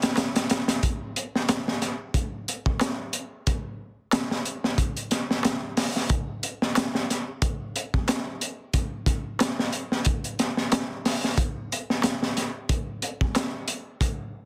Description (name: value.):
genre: trip hop.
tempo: 91 BPM.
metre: 4/4.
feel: swing 56% on 16ths.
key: none.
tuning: none.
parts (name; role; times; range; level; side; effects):
crunchy breakbeat drum kit; drums; 0.0-14.2 s; hi-hat, kick drum, snare drum; -27 LUFS; equal; none.
darbuka; percussion; 0.2-13.5 s; none; -35 LUFS; equal; none.
room: light reverb, studio reverb.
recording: dense, heavily limited modern master.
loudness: -27 LUFS.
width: mono.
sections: 0.0-14.5 A section.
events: none.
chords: none.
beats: 0.17 | 0.83 1.49 2.14 2.80 | 3.46 4.12 4.78 5.44 | 6.10 6.76 7.42 8.08 | 8.74 9.40 10.06 10.72 | 11.38 12.03 12.69 13.35 | 14.01.